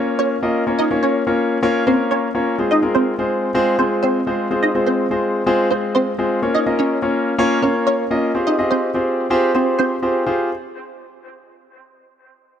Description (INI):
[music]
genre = pop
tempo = 125 BPM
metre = 4/4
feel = straight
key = F minor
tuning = A4 = 440 Hz
[part]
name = wide unison pluck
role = melody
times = 0.0-10.1 s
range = C4 to Eb5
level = -21 LUFS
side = right 2 dB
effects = ensemble chorus, dub echo
[part]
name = clear concert grand piano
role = accompaniment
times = 0.0-10.5 s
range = Ab3 to Eb5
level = -17 LUFS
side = left 1 dB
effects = none
[sound]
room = light reverb, small room ambience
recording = none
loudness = -16 LUFS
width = side -9 dB against mid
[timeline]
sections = 0.0-10.3 A section; 10.3-12.2 B section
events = none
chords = 0.0 Bbm; 2.6 Fm; 6.4 Bbm; 8.3 Fmadd9